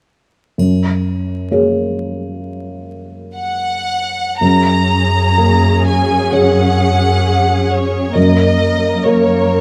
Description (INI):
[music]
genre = cinematic, emotional film score for orchestra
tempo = 56-68 BPM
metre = 4/4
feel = rubato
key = Gb major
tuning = A4 = 438 Hz
[part]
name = felt-muted upright piano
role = accompaniment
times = 0.6-9.6 s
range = Gb2 to Db5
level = -19 LUFS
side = equal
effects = none
[part]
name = triangle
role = percussion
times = 0.6-2.4 s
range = none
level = -46 LUFS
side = equal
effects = none
[part]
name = rich studio violin section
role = melody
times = 3.4-9.6 s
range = Db5 to Bb5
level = -19 LUFS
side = equal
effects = none
[part]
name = warm studio viola section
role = accompaniment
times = 4.4-9.6 s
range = Bb3 to Bb4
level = -20 LUFS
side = equal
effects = none
[part]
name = warm studio cello section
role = bass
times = 4.4-9.6 s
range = Gb2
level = -18 LUFS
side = equal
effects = none
[sound]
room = moderate concert hall reverb, RT60 2.1 s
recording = close, detailed microphones, vinyl crackle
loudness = -14 LUFS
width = mono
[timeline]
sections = 0.6-4.4 A section; 4.4-9.6 B section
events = none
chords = 0.6 Gbadd9; 8.2 Ebm/Gb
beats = | 0.59 1.53 2.42 3.38 | 4.42 5.38 6.33 7.25 | 8.17 9.06